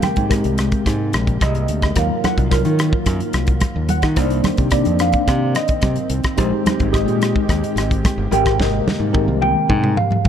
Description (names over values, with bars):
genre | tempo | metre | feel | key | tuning
electric jazz fusion | 109 BPM | 4/4 | straight | unclear | A4 = 440 Hz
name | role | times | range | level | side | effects
tine electric piano | accompaniment | 0.0-10.3 s | Gb3 to G5 | -20 LUFS | equal | overdrive, fast stereo tremolo, phaser
warm analog pad | sustained chords | 0.0-10.3 s | C3 to G4 | -26 LUFS | left 2 dB | chorus
modern bright fingered electric bass | bass | 0.0-10.3 s | G1 to Eb3 | -20 LUFS | equal | none
modern studio drum kit | drums | 0.0-10.3 s | hi-hat, kick drum, rim click, snare drum, toms | -20 LUFS | equal | none
congas | percussion | 0.0-10.3 s | none | -25 LUFS | right 2 dB | none
room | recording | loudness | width
light reverb | dark, warm production | -15 LUFS | side -9 dB against mid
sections
0.0-10.3 A section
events
drum fill 8.6-10.3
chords
0.0 Abmaj9; 2.0 Ebmadd9; 4.2 Cm9; 6.4 Bb13sus4; 8.3 Abmaj9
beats
0.31 0.86 1.41 | 1.97 2.52 3.07 3.62 | 4.17 4.73 5.28 5.83 | 6.38 6.93 7.48 8.04 | 8.59 9.14 9.69 10.24